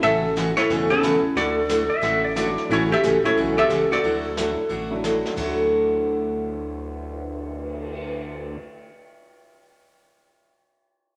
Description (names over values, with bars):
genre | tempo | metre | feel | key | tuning
country, western swing | 180 BPM | 4/4 | swing 64% on 8ths | D major | A4 = 444 Hz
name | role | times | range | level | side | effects
archtop guitar, miked and amplified | melody | 0.0-5.0 s | C#4 to E5 | -24 LUFS | equal | none
growling clarinet | second line | 0.0-5.0 s | E4 to A4 | -29 LUFS | equal | none
picked steel-string acoustic guitar | accompaniment | 0.0-8.9 s | C#3 to F#4 | -27 LUFS | equal | none
warm upright piano | accompaniment | 0.0-8.6 s | D2 to E4 | -34 LUFS | equal | none
fat analog bass | bass | 0.0-8.6 s | E1 to D2 | -34 LUFS | equal | none
vintage brush drum kit | drums | 0.0-8.0 s | brushed snare drum, crash cymbal, cymbal swell, hi-hat, kick drum, snare drum | -38 LUFS | equal | none
pedal steel guitar | second line | 1.9-2.6 s | D5 to E5 | -27 LUFS | equal | none
room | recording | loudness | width
wet large studio reverb, RT60 1.2 s | none | -22 LUFS | mono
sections
0.0-2.7 A section; 2.7-5.4 B section; 5.4-8.0 C section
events
none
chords
0.0 A6; 1.4 Dadd9; 2.7 A6; 4.0 Dadd9